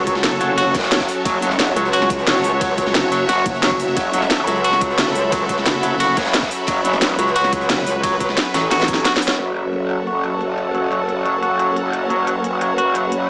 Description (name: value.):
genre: dark technical drum and bass.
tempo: 177 BPM.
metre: 4/4.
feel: straight.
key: F# minor.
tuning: A4 = 440 Hz.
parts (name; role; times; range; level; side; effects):
sweeping resonant pad; sustained chords; 0.0-13.3 s; F#3 to C#5; -26 LUFS; equal; chorus, sidechain pumping.
metallic wobble bass; bass; 0.0-9.1 s; F#1 to C#2; -25 LUFS; equal; chorus, tube saturation.
clear studio string section; texture; 0.0-13.3 s; F#4 to B5; -28 LUFS; equal; sidechain pumping.
clean electric guitar; arpeggios; 0.1-13.1 s; F#3 to F#4; -24 LUFS; equal; sidechain pumping, low-pass filter, dub echo.
crunchy breakbeat drum kit; drums; 0.1-9.4 s; hi-hat, snare drum; -31 LUFS; equal; none.
drum and bass drum kit; drums; 0.1-13.2 s; hi-hat, ride cymbal, snare drum; -24 LUFS; equal; low-pass filter on snare, low-pass filter on hats, low-pass filter on cymbals.
electronic kick drum; drums; 0.1-8.9 s; none; -31 LUFS; equal; overdrive.
growl bass; bass; 0.7-7.2, 9.4-13.3 s; F#1; -25 LUFS; equal; chorus, overdrive, sidechain pumping.
room: moderate plate reverb, RT60 1.2 s, small room ambience.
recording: small speaker sound.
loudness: -18 LUFS.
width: mono.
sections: 0.0-9.4 A section; 9.4-13.3 B section.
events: drop 0.0-9.4; drum fill 8.7-9.4; band accent 9.3; filter sweep on drum 9.4-13.3; filter sweep on clean electric guitar 9.4-13.3.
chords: 0.0 F#m.